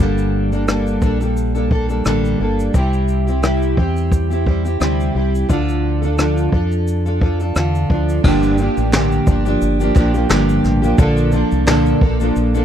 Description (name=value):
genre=acoustic pop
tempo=87 BPM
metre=4/4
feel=swing 55% on 16ths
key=G minor from 8.2 s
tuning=A4 = 440 Hz
part: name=fingerpicked plugged-in steel-string acoustic guitar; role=accompaniment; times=0.0-12.6 s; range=G2 to A4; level=-17 LUFS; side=equal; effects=double-tracked left and right
part: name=deep dub fingered electric bass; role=bass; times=0.0-12.6 s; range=G1 to F2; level=-19 LUFS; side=equal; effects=none
part: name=jazz brush drum kit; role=drums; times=0.2-12.6 s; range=crash cymbal, kick drum, rim click, shaker, snare drum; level=-16 LUFS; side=equal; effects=none
part: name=group handclap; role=percussion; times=8.9-11.9 s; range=none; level=-33 LUFS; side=right 5 dB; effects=none
room=little or no reverb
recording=dry, close 1970s-style studio recording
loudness=-14 LUFS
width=side -9 dB against mid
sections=0.0-8.2 A section; 8.2-12.6 B section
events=none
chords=0.0 Gmadd9; 2.7 C; 5.5 Dm; 8.2 Gm7; 11.0 Bbmaj7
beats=0.68 1.36 2.05 | 2.74 3.43 4.12 4.80 | 5.49 6.18 6.87 7.55 | 8.24 8.93 9.62 10.30 | 10.99 11.68 12.36